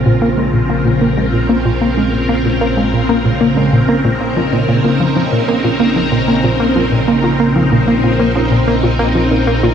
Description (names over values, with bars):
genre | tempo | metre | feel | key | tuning
ambient, sequencer-driven space music | 94 BPM | 4/4 | straight | Bb minor | A4 = 440 Hz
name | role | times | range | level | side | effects
phased string machine | sustained chords | 0.0-9.7 s | Db3 to Bb4 | -15 LUFS | equal | ensemble chorus, phaser, shimmer reverb
fat analog bass | bass | 0.0-9.7 s | Bb1 | -21 LUFS | equal | none
bubbling stepped-filter texture | texture | 0.0-9.7 s | C4 to C5 | -26 LUFS | equal | chorus, built-in reverb, shimmer reverb
warbly dusty pluck | arpeggios | 0.1-9.7 s | Bb3 to F4 | -24 LUFS | moving between left 3 dB and right 3 dB | none
tight sequenced synth | riff | 0.1-9.7 s | Bb2 to Bb3 | -15 LUFS | equal | chorus, analog delay, shimmer reverb
room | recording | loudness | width
wet huge ambient reverb, RT60 8.2 s | nothing above 10.4 kHz | -11 LUFS | side -8 dB against mid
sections
0.0-9.7 A section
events
fade-in on synth texture 0.0-9.7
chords
0.0 Bbmadd9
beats
| 0.06 0.70 1.33 1.97 | 2.61 3.25 3.89 4.53 | 5.16 5.80 6.44 7.08 | 7.72 8.36 8.99 9.63